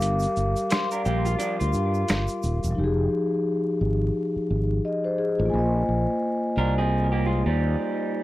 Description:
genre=lo-fi hip hop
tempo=87 BPM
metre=4/4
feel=swing 59% on 16ths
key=F dorian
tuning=A4 = 437 Hz
part: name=vibraphone with soft mallets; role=accompaniment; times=0.0-8.2 s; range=F3 to D6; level=-25 LUFS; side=left 1 dB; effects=cassette tape, low-pass filter, plate reverb
part: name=fretless electric bass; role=bass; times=0.0-7.7 s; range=Eb1 to G2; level=-24 LUFS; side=equal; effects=none
part: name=boom bap sampler-style drum kit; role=drums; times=0.0-2.8 s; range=finger snaps, hi-hat, shaker, snare drum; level=-28 LUFS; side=equal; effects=none
part: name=egg shaker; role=percussion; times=0.0-2.8 s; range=none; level=-46 LUFS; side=right 9 dB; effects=none
part: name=electric guitar through a small old amp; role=second line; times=0.7-8.2 s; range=F3 to C5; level=-29 LUFS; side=right 1 dB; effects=low-pass filter, tape echo
room=light reverb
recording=vinyl crackle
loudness=-22 LUFS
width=side -16 dB against mid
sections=0.0-2.8 A section; 2.8-8.2 B section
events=break 0.0-2.8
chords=0.0 Gm7; 2.8 Fm9; 5.5 Bb9sus4

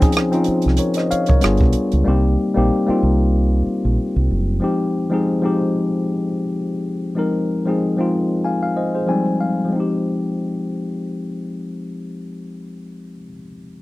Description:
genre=R&B, neo-soul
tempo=94 BPM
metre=4/4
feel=swing 56% on 16ths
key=F minor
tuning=A4 = 439 Hz
part: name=tine electric piano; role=accompaniment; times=0.0-13.8 s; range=F3 to Ab5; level=-19 LUFS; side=left 1 dB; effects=none
part: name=deep dub fingered electric bass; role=bass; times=0.0-4.6 s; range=Gb1 to Db2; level=-17 LUFS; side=right 1 dB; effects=none
part: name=compact cocktail drum kit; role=drums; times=0.0-2.0 s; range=hi-hat, kick drum, rim click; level=-18 LUFS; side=right 1 dB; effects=none
room=little or no reverb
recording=dry, close 1970s-style studio recording, faint mains hum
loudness=-17 LUFS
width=side -18 dB against mid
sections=0.0-9.7 A section; 9.7-12.3 B section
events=tine electric piano fill 8.8-9.7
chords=0.0 Dbmaj7; 1.4 G7b9; 2.1 Cm7; 4.6 Fm9

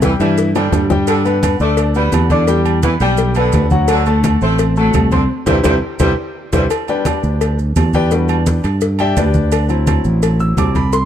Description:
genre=latin, salsa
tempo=170 BPM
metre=4/4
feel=straight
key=G major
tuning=A4 = 440 Hz
part: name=clear saxophone section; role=second line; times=0.0-6.6 s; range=C3 to A3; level=-22 LUFS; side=right 2 dB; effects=none
part: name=bright concert grand piano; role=accompaniment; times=0.0-11.1 s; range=E3 to E6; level=-18 LUFS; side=left 4 dB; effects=none
part: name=fingered electric bass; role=bass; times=0.0-11.1 s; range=A1 to G2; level=-16 LUFS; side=right 1 dB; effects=none
part: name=congas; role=percussion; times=0.0-11.1 s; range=none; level=-20 LUFS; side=equal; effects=none
part: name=cowbell and bongos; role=percussion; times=0.0-11.1 s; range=none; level=-23 LUFS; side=left 7 dB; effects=none
part: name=maracas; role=percussion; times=0.0-11.1 s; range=none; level=-33 LUFS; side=right 12 dB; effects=none
part: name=timbales and agogo bells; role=percussion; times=0.0-10.9 s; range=none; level=-24 LUFS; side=right 9 dB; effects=none
room=light reverb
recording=dark, warm production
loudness=-12 LUFS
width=side -10 dB against mid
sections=0.0-6.7 A section; 6.7-11.1 B section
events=drum fill 0.0-1.1, 5.3-6.7; band accent 5.3-6.7; grand piano solo 6.7-11.1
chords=0.0 C; 1.1 G; 2.5 Em7; 3.9 D7; 5.3 C; 6.7 G; 8.1 Em7; 9.5 D7

